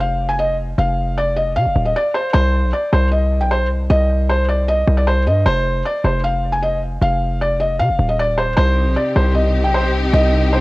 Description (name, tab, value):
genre	hip hop, trap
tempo	154 BPM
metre	4/4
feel	half-time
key	C harmonic minor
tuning	A4 = 440 Hz
part	felt-muted upright piano	melody	0.0-10.6 s	C5 to Ab5	-18 LUFS	equal	cassette tape
part	hard-hitting 808-style bass	bass	0.0-10.6 s	Eb1 to C3	-17 LUFS	equal	none
part	warm symphonic string section	sustained chords	8.6-10.6 s	C3 to G4	-21 LUFS	left 1 dB	cassette tape
room	small room ambience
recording	home recording on cassette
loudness	-15 LUFS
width	side -20 dB against mid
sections	0.0-2.3 A section; 2.3-10.6 B section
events	none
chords	0.0 F5; 2.3 Cm; 5.5 F5; 8.6 Cm